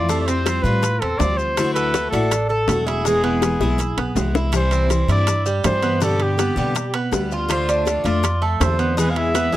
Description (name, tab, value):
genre	latin, Cuban son and guajira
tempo	162 BPM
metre	4/4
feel	straight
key	unclear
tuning	A4 = 440 Hz
part	warm trumpet	melody	0.0-9.6 s	G4 to F5	-23 LUFS	equal	none
part	picked steel-string acoustic guitar	accompaniment	0.0-9.6 s	B2 to G4	-24 LUFS	left 3 dB	none
part	Cuban tres	arpeggios	0.0-9.6 s	G3 to A4	-24 LUFS	right 3 dB	none
part	upright bass	bass	0.0-9.6 s	E1 to B2	-22 LUFS	equal	none
part	bongos	percussion	0.1-9.6 s	none	-26 LUFS	left 7 dB	none
part	maracas	percussion	0.1-9.6 s	none	-33 LUFS	left 15 dB	none
part	timbales	percussion	0.3-9.5 s	none	-28 LUFS	right 6 dB	none
room	small room ambience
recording	dry, close 1970s-style studio recording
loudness	-17 LUFS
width	side -14 dB against mid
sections	0.0-4.5 A section; 4.5-9.6 B section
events	drum fill 3.4-4.5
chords	0.1 Fadd9; 1.6 Dadd9; 3.1 E; 4.5 C; 6.0 G; 7.5 Dm; 9.0 E